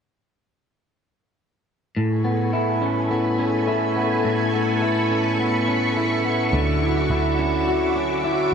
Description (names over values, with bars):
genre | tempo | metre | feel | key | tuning
dream pop | 105 BPM | 4/4 | straight | unclear | A4 = 440 Hz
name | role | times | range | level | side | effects
string machine, full ensemble | sustained chords | 2.0-8.5 s | F#4 to D6 | -24 LUFS | right 1 dB | phaser, ensemble chorus
electric guitar at the edge of break-up | arpeggios | 2.0-8.5 s | A2 to F#4 | -21 LUFS | equal | wide subtle chorus, ping-pong delay
vintage muted picked electric bass | bass | 6.5-8.5 s | D2 | -25 LUFS | right 1 dB | none
room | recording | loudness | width
wet shimmer reverb, RT60 6.4 s | dark, warm production | -19 LUFS | side -6 dB against mid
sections
2.0-8.5 A section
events
none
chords
2.0 Amaj9; 6.5 Dmaj9